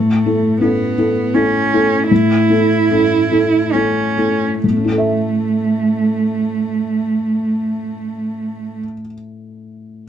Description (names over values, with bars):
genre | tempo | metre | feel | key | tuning
neoclassical piano and strings | 66-85 BPM | 3/4 | rubato | unclear | A4 = 440 Hz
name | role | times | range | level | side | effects
warm cello | second line | 0.0-8.8 s | A3 to E4 | -17 LUFS | right 5 dB | none
felt-muted upright piano | accompaniment | 0.0-10.1 s | A2 to E5 | -17 LUFS | left 3 dB | none
room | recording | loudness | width
wet studio reverb, RT60 0.5 s | dark, warm production | -14 LUFS | side -9 dB against mid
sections
0.0-4.6 A section; 4.6-10.0 B section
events
slowing down 0.0-4.6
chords
0.0 A